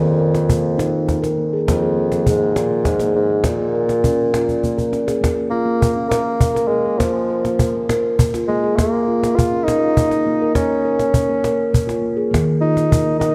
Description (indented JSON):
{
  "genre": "world meditative, meditative tuned percussion",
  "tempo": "68 BPM (dotted quarters)",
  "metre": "6/8",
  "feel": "straight",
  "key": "Bb minor pentatonic",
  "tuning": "A4 = 440 Hz",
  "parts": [
    { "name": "dark bassoon", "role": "melody", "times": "0.0-13.3 s", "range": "F2 to F4", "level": "-22 LUFS", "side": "equal", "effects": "diffuse ambient delay" },
    { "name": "steel tongue drum", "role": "arpeggios", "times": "0.0-13.3 s", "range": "Eb3 to Bb4", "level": "-21 LUFS", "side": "equal", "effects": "diffuse ambient delay" },
    { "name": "cajon", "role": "percussion", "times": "0.3-13.3 s", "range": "none", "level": "-23 LUFS", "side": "equal", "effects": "none" }
  ],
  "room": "wet plate reverb, RT60 2.5 s",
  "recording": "dreamy mix soaked in reverb",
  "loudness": "-18 LUFS",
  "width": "mono",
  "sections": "0.0-5.2 A section; 5.2-13.3 B section",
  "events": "drum fill 4.5-5.2",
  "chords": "0.0 Eb5; 1.7 Fm; 3.5 Bbm; 12.3 Eb5",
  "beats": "0.79 | 1.68 2.56 | 3.45 4.34 | 5.23 6.12 | 7.00 7.89 | 8.78 9.67 | 10.55 11.44 | 12.33 13.21"
}